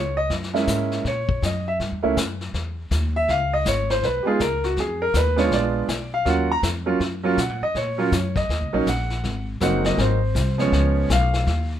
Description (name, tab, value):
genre	jazz piano trio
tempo	161 BPM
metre	4/4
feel	swing 63% on 8ths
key	Db mixolydian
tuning	A4 = 440 Hz
part	clear baby grand piano	melody	0.0-11.7 s	F3 to Bb5	-22 LUFS	right 2 dB	none
part	upright bass	bass	0.0-11.8 s	Gb1 to Cb3	-24 LUFS	equal	none
part	vintage brush drum kit	drums	0.3-11.8 s	brushed snare drum, hi-hat, kick drum, snare drum	-28 LUFS	left 4 dB	none
room	light reverb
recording	minimal, uncompressed stereo recording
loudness	-20 LUFS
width	side -10 dB against mid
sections	0.0-11.8 A section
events	grand piano solo 0.0-11.8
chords	0.3 Gb9; 1.8 N.C.; 3.3 Db7; 4.8 Fm7b5; 5.5 Bb7b9; 6.3 Ebm7; 9.2 Ab9; 10.7 Db9